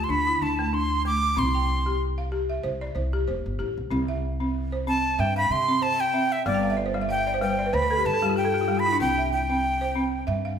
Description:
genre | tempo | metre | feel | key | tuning
west african traditional, West African string and xylophone music | 94 BPM | 4/4 | swing 56% on 16ths | C major | A4 = 440 Hz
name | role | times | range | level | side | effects
breathy bright jazz flute | melody | 0.0-10.2 s | D5 to D6 | -24 LUFS | right 1 dB | none
balafon | arpeggios | 0.0-10.6 s | G3 to G5 | -27 LUFS | equal | none
upright bass | bass | 0.0-10.6 s | E1 to C3 | -29 LUFS | equal | none
room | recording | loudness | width
moderate recital hall reverb, RT60 1.7 s | recorded in a church or concert hall | -22 LUFS | side -8 dB against mid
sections
0.0-3.9 A section; 3.9-10.6 B section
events
flute solo 3.9-10.6; balafon fill 6.5-9.0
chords
0.0 Dm; 1.4 C; 6.5 G; 9.0 C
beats
0.10 0.73 | 1.37 2.01 2.64 3.28 | 3.92 4.55 5.19 5.82 | 6.46 7.09 7.73 8.37 | 9.00 9.64 10.27

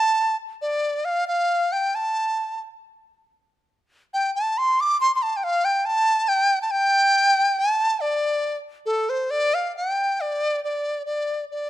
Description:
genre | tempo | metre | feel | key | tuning
chinese traditional | 69 BPM | 2/4 | rubato | D yu mode | A4 = 441 Hz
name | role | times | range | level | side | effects
mellow dizi | solo | 0.0-11.7 s | A4 to D6 | -20 LUFS | equal | none
room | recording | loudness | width
moderate recital hall reverb, RT60 1.6 s | close, detailed microphones | -20 LUFS | side -13 dB against mid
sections
0.0-9.7 A section; 9.7-11.7 B section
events
none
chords
none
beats
0.22 | 1.07 1.94 | 2.82 3.70 | 4.56 5.42 | 6.26 7.12 | 7.99 8.86 | 9.74 10.61 | 11.48

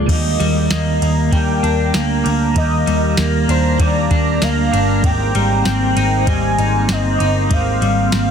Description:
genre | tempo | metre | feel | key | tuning
dream pop | 97 BPM | 4/4 | straight | Eb major | A4 = 440 Hz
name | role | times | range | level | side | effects
warm velvety synth lead | melody | 0.0-8.3 s | C5 to Ab5 | -22 LUFS | right 1 dB | chorus, digital delay
phased analog pad | sustained chords | 0.0-8.3 s | Bb3 to Bb5 | -22 LUFS | right 3 dB | phaser, chorus
clean electric guitar | arpeggios | 0.0-8.3 s | F3 to Eb4 | -21 LUFS | left 6 dB | wide subtle chorus, digital delay
vintage muted picked electric bass | bass | 0.0-8.3 s | G1 to Eb2 | -18 LUFS | equal | none
clean electric guitar | accompaniment | 0.1-8.3 s | Eb3 to G4 | -24 LUFS | right 4 dB | harmonic tremolo, analog chorus
soft vintage rhythm box | drums | 0.1-8.3 s | crash cymbal, kick drum, ride cymbal, snare drum, tambourine | -21 LUFS | equal | none
room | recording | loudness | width
light reverb | dense, heavily limited modern master | -13 LUFS | side -7 dB against mid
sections
0.1-8.3 A section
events
none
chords
0.1 Ebmaj7; 5.0 Abmaj7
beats
| 0.09 0.70 1.32 1.94 | 2.56 3.18 3.80 4.42 | 5.03 5.65 6.27 6.89 | 7.51 8.13

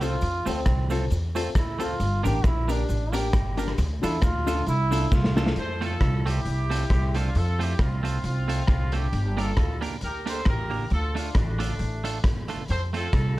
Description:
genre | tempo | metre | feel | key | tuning
ska | 135 BPM | 4/4 | swing 56% on 8ths | unclear | A4 = 440 Hz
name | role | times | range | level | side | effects
bright trombone | melody | 0.0-5.6 s | C4 to G4 | -30 LUFS | right 2 dB | slapback echo
semi-hollow electric guitar | accompaniment | 0.0-13.1 s | A3 to Bb4 | -32 LUFS | right 5 dB | none
dark upright piano | stabs | 0.0-5.5 s | C4 to Bb4 | -31 LUFS | left 4 dB | slapback echo
upright bass | bass | 0.0-13.4 s | G1 to F2 | -26 LUFS | equal | none
raw garage drum kit | drums | 0.0-13.2 s | hi-hat, kick drum, rim click, snare drum | -27 LUFS | equal | none
cabasa | percussion | 0.0-5.5 s | none | -48 LUFS | right 6 dB | none
clear horn section | melody | 5.6-13.4 s | A3 to C5 | -32 LUFS | equal | slapback echo
room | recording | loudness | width
little or no reverb | dark, warm production | -22 LUFS | side -17 dB against mid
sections
0.0-5.6 A section; 5.6-13.4 B section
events
trombone solo 0.0-5.6; drum fill 5.1-5.6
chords
0.0 F; 2.0 Gm; 3.8 Dm; 9.1 Gm; 10.9 Dm; 12.7 F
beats
| 0.21 0.66 1.11 1.55 | 2.00 2.44 2.89 3.34 | 3.78 4.23 4.67 5.12 | 5.56 6.01 6.46 6.90 | 7.35 7.79 8.24 8.68 | 9.13 9.57 10.02 10.46 | 10.91 11.35 11.80 12.24 | 12.69 13.13

